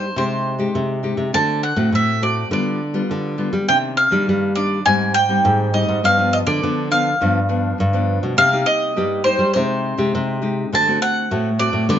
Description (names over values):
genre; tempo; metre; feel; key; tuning
samba and choro; 102 BPM; 4/4; straight; C minor; A4 = 442 Hz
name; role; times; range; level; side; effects
bowl-back mandolin; melody; 0.0-12.0 s; C5 to A5; -18 LUFS; equal; none
nylon-string guitar; accompaniment; 0.0-12.0 s; G2 to G4; -23 LUFS; left 2 dB; none
nylon-string guitar; bass; 0.0-12.0 s; G2 to G3; -21 LUFS; equal; none
room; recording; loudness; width
moderate studio reverb, RT60 0.8 s; nothing above 7.7 kHz; -16 LUFS; side -9 dB against mid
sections
0.0-8.4 A section; 8.4-12.0 B section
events
none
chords
0.2 Abmaj7/C; 1.3 D7; 2.5 G7/D; 3.7 Cm9; 4.9 Abmaj7; 6.0 G7; 8.4 Cm7; 9.6 Abmaj7/C; 10.7 D7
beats
0.17 0.76 | 1.34 1.93 2.52 3.10 | 3.69 4.28 4.87 5.45 | 6.04 6.63 7.21 7.80 | 8.39 8.97 9.56 10.14 | 10.73 11.31 11.90